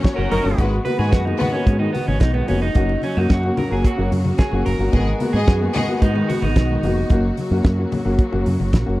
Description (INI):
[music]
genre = disco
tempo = 110 BPM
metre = 4/4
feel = straight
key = G# minor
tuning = A4 = 440 Hz
[part]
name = clear studio string section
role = second line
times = 0.0-1.6, 4.9-6.0 s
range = G#3 to D#5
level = -25 LUFS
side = left 2 dB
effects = none
[part]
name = electric guitar at the edge of break-up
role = accompaniment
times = 0.0-7.2 s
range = B3 to B4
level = -26 LUFS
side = right 2 dB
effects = spring reverb
[part]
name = rich studio string section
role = sustained chords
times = 0.0-9.0 s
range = C#3 to F#4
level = -27 LUFS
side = equal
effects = none
[part]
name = damped 70s drum kit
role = drums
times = 0.0-8.9 s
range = hi-hat, kick drum, snare drum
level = -16 LUFS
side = equal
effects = none
[part]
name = congas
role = percussion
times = 0.0-8.7 s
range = none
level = -29 LUFS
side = left 3 dB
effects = none
[part]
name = warm grand piano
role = accompaniment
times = 0.2-9.0 s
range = G#2 to F#4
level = -24 LUFS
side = left 2 dB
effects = none
[part]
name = fingered electric bass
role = bass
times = 0.2-9.0 s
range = E#1 to G#2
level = -20 LUFS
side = equal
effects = none
[part]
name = mellow horn section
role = stabs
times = 0.3-0.7 s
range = D#4 to A#4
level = -22 LUFS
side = right 1 dB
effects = none
[sound]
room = little or no reverb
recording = dry, close 1970s-style studio recording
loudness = -16 LUFS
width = side -17 dB against mid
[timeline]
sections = 0.6-9.0 A section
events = clean electric guitar solo 0.6-9.0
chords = 0.0 F#; 0.6 G#m7; 2.8 F#; 4.9 G#m7; 7.1 F#